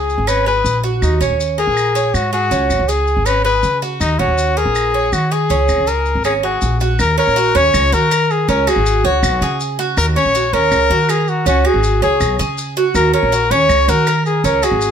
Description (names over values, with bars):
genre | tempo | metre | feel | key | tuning
latin, Cuban son and guajira | 161 BPM | 4/4 | straight | Eb minor | A4 = 440 Hz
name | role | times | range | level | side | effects
warm trumpet | melody | 0.0-14.9 s | Eb4 to Db5 | -16 LUFS | left 4 dB | none
Cuban tres | arpeggios | 0.0-14.9 s | Db4 to Db5 | -18 LUFS | right 6 dB | none
upright bass | bass | 0.0-14.9 s | Ab1 to Eb3 | -18 LUFS | equal | none
maracas | percussion | 0.1-14.9 s | none | -28 LUFS | left 3 dB | none
claves | percussion | 0.3-14.8 s | none | -28 LUFS | right 3 dB | none
room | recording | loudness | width
light reverb | none | -13 LUFS | side -8 dB against mid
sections
0.0-7.0 A section; 7.0-14.9 B section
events
none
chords
0.0 Db7sus4; 1.0 Ebm7; 2.5 Db7sus4; 4.0 Ebm7; 5.5 Dbsus4; 7.0 Ebm7; 8.5 Dbsus4; 10.0 Ebm7; 11.5 Dbsus4; 13.0 Ebm7